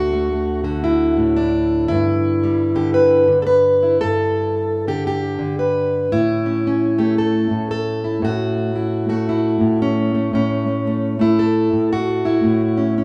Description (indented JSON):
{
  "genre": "folk, solo fingerstyle acoustic guitar",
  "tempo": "114 BPM",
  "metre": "4/4",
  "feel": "swing 62% on 8ths",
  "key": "unclear",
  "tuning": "A4 = 441 Hz",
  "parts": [
    { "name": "fingerpicked plugged-in steel-string acoustic guitar", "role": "solo", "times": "0.0-13.0 s", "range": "D2 to B4", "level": "-18 LUFS", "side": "equal", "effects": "none" }
  ],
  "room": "wet stone room reverb, RT60 1.4 s",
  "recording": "band playing live in one room, small room ambience",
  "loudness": "-18 LUFS",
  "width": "mono",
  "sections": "0.0-13.0 A section",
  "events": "none",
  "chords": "0.0 D; 1.9 G6; 6.1 A"
}